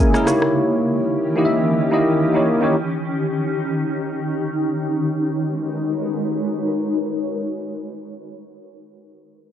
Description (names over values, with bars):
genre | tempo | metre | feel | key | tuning
amapiano | free time | none | none | unclear | A4 = 440 Hz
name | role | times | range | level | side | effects
bell-like tine electric piano | accompaniment | 0.0-2.8 s | A#3 to G#5 | -16 LUFS | equal | analog chorus, low-pass filter
granular cloud pad | sustained chords | 0.0-7.9 s | C#3 to C#5 | -22 LUFS | equal | built-in reverb, low-pass filter
electronic rim click and shaker | drums | 0.1-0.5 s | none | -19 LUFS | equal | vintage 12-bit sampler grit
room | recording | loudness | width
light reverb | dry, gritty hardware recording, cassette tape | -18 LUFS | side -10 dB against mid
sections
0.0-4.9 A section; 4.9-7.1 B section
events
tine electric piano fill 0.0-0.5; filter sweep 0.0-4.9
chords
0.3 D#7b9; 4.9 G#m11